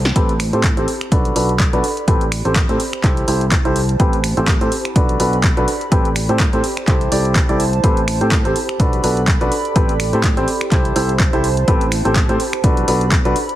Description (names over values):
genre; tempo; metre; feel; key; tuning
piano house; 125 BPM; 4/4; swing 56% on 16ths; A dorian; A4 = 440 Hz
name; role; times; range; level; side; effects
fingered electric bass; bass; 0.0-13.3 s; A1 to A2; -20 LUFS; equal; tube saturation, sidechain pumping
warbly tape-like pad; texture; 0.0-13.6 s; E4 to B5; -25 LUFS; right 2 dB; chorus, built-in reverb, sidechain pumping
punchy analog drum machine; drums; 0.1-13.6 s; finger snaps, handclaps, hi-hat, snare drum; -22 LUFS; equal; none
bright upright piano; riff; 0.2-13.3 s; C4 to D5; -19 LUFS; equal; sidechain pumping, low-pass filter
electronic kick drum; drums; 0.2-13.2 s; none; -16 LUFS; equal; none
room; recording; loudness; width
light reverb, digital ambience; heavily compressed radio sound, multiband compression; -14 LUFS; side -13 dB against mid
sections
0.0-13.6 A section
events
drum fill 0.0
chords
0.2 Am9; 0.9 Bm7; 1.8 Am9; 2.8 C6; 4.0 Am9; 4.7 Bm7; 5.7 Am9; 6.6 C6; 7.8 Am9; 8.6 Bm7; 9.5 Am9; 10.5 C6; 11.7 Am9; 12.4 Bm7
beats
| 0.16 0.64 1.12 1.60 | 2.08 2.56 3.04 3.52 | 4.00 4.48 4.96 5.44 | 5.92 6.40 6.88 7.36 | 7.84 8.32 8.80 9.28 | 9.76 10.24 10.72 11.20 | 11.68 12.16 12.64 13.12